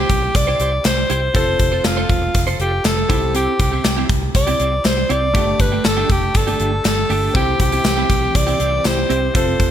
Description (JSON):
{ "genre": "1980s-style pop", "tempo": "120 BPM", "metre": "4/4", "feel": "straight", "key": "C major", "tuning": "A4 = 440 Hz", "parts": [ { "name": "edgy alto saxophone", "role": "melody", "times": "0.0-9.7 s", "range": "F4 to D5", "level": "-20 LUFS", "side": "equal", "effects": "none" }, { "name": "warm concert grand piano", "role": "accompaniment", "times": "0.0-9.7 s", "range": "A3 to A4", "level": "-27 LUFS", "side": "left 3 dB", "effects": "none" }, { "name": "clean electric guitar", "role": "riff", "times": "0.0-9.6 s", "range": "A3 to C5", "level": "-26 LUFS", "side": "right 6 dB", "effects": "ensemble chorus, digital delay" }, { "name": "vintage muted fingered electric bass", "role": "bass", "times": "0.0-9.7 s", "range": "E1 to C2", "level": "-22 LUFS", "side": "equal", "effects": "none" }, { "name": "gated 80s drum kit", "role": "drums", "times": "0.1-9.7 s", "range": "hi-hat, kick drum, snare drum, tambourine", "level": "-18 LUFS", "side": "equal", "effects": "none" }, { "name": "group handclap", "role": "percussion", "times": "0.8-9.0 s", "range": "none", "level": "-36 LUFS", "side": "left 7 dB", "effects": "none" }, { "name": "string machine, violins", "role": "sustained chords", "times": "7.3-9.7 s", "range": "C3 to G4", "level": "-28 LUFS", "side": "equal", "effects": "ensemble chorus" } ], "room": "light reverb, small room ambience", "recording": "none", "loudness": "-14 LUFS", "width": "side -10 dB against mid", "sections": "0.0-9.7 A section", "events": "none", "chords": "0.0 C; 1.3 F; 3.1 C; 5.3 Gsus2; 7.3 C" }